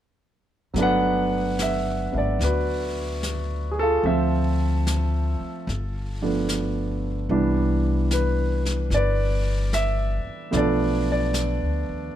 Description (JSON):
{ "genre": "jazz ballad", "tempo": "74 BPM", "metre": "4/4", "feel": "swing 67% on 8ths", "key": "G major", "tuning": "A4 = 440 Hz", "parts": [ { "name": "dark concert grand piano", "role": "accompaniment", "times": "0.7-12.2 s", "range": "E3 to F#5", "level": "-23 LUFS", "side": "right 2 dB", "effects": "none" }, { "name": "upright bass", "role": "bass", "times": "0.7-12.1 s", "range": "G1 to Eb2", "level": "-25 LUFS", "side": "left 1 dB", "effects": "none" }, { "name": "jazz brush drum kit", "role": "drums", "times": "0.8-12.2 s", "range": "brushed snare drum, hi-hat, snare drum", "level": "-34 LUFS", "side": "left 2 dB", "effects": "none" } ], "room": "little or no reverb", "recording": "close, detailed microphones", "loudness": "-21 LUFS", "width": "side -11 dB against mid", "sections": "0.8-12.2 A section", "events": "none", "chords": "0.8 Gmaj7; 4.0 Dm7; 5.7 G7; 7.3 Cmaj9; 10.5 Bm7b5" }